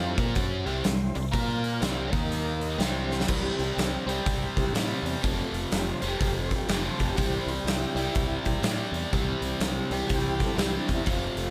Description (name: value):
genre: blues rock power trio and southern rock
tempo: 123 BPM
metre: 4/4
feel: swing 62% on 8ths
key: C major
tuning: A4 = 442 Hz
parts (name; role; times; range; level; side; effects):
- smooth overdriven lead guitar; melody; 0.0-2.8 s; C5; -50 LUFS; equal; none
- tonewheel organ; sustained chords; 0.0-11.5 s; E3 to F5; -36 LUFS; equal; fast rotary speaker
- biting overdriven guitar; riff; 0.0-11.5 s; F2 to Bb4; -32 LUFS; equal; none
- growling fingered electric bass; bass; 0.0-11.5 s; F1 to Bb2; -35 LUFS; equal; overdrive
- huge arena drum kit; drums; 0.2-11.5 s; crash cymbal, hi-hat, kick drum, snare drum; -32 LUFS; equal; none
room: moderate large studio reverb, RT60 1.2 s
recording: none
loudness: -28 LUFS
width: mono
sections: 0.0-3.3 A section; 3.3-11.5 B section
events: drum fill 3.0; tonewheel organ solo 3.3-11.5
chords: 0.0 C; 1.3 Bb5; 1.8 C; 2.1 Eb5; 2.8 C; 5.2 F; 7.2 C